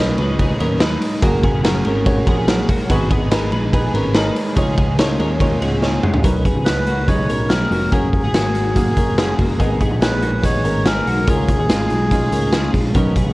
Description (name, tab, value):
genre	jangly indie pop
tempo	143 BPM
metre	4/4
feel	straight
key	F# major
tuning	A4 = 440 Hz
part	clear upright piano	accompaniment	0.0-13.3 s	A#3 to D#5	-25 LUFS	right 1 dB	none
part	picked steel-string acoustic guitar	accompaniment	0.0-13.3 s	G#2 to B4	-27 LUFS	right 3 dB	none
part	twelve-string electric guitar	arpeggios	0.0-13.3 s	G#3 to B4	-24 LUFS	left 2 dB	analog chorus
part	picked electric bass	bass	0.0-13.3 s	E#1 to D#2	-21 LUFS	equal	tube saturation
part	raw garage drum kit	drums	0.2-13.3 s	hi-hat, kick drum, ride cymbal, snare drum, toms	-18 LUFS	equal	none
part	melodica	melody	6.6-12.7 s	G#4 to C#5	-23 LUFS	equal	none
room	little or no reverb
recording	worn, warbling old tape, cassette tape, warbly pitch drift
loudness	-15 LUFS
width	side -20 dB against mid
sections	0.0-6.2 A section; 6.2-13.3 B section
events	drum fill 5.8-6.2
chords	0.0 Badd9; 1.2 F#add9; 2.9 G#m; 4.6 C#add9; 6.2 Badd9; 7.9 F#add9; 9.6 G#m; 11.3 C#add9